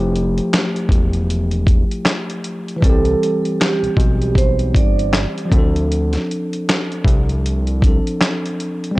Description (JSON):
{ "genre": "lo-fi hip hop", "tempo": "78 BPM", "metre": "4/4", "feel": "swing 57% on 16ths", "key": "unclear", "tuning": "A4 = 444 Hz", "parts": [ { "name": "bell-like tine electric piano", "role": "accompaniment", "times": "0.0-9.0 s", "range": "E3 to A4", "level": "-22 LUFS", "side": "left 1 dB", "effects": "none" }, { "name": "fat analog bass", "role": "bass", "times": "0.0-8.0 s", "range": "E1 to D2", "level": "-19 LUFS", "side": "equal", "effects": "tube saturation" }, { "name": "dusty soul sampler-style drum kit", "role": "drums", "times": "0.2-9.0 s", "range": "handclaps, hi-hat, kick drum, snare drum", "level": "-16 LUFS", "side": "equal", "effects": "vintage 12-bit sampler grit" }, { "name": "vibraphone with soft mallets", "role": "melody", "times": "2.8-5.5 s", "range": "G4 to D5", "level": "-22 LUFS", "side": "right 5 dB", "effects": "tape echo" } ], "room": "little or no reverb", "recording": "dry, gritty hardware recording", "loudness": "-15 LUFS", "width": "side -20 dB against mid", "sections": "0.0-9.0 A section", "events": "none", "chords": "0.0 Fmaj9; 2.8 Cmaj7; 5.5 Dm7" }